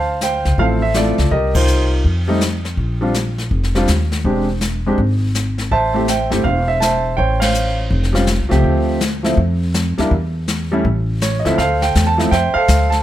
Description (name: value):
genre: jazz piano trio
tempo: 164 BPM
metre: 4/4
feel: swing 65% on 8ths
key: D minor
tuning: A4 = 440 Hz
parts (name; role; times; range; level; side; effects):
- clear concert grand piano; melody; 0.0-13.0 s; D2 to A5; -17 LUFS; right 1 dB; none
- upright bass; bass; 0.0-13.0 s; E1 to F2; -18 LUFS; equal; none
- jazz brush drum kit; drums; 0.2-13.0 s; brushed snare drum, hi-hat, kick drum, ride cymbal, snare drum; -22 LUFS; left 2 dB; none
room: light reverb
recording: none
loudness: -14 LUFS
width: side -13 dB against mid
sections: 0.0-11.6 A section; 11.6-13.0 B section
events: band accent 1.5, 7.4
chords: 0.0 Dm7; 1.3 Cm7; 2.0 N.C.; 2.8 Bb5; 4.2 E7alt; 5.7 Am7; 7.2 A7alt; 8.6 Dm7; 10.1 N.C.; 10.9 A5; 11.6 Dm9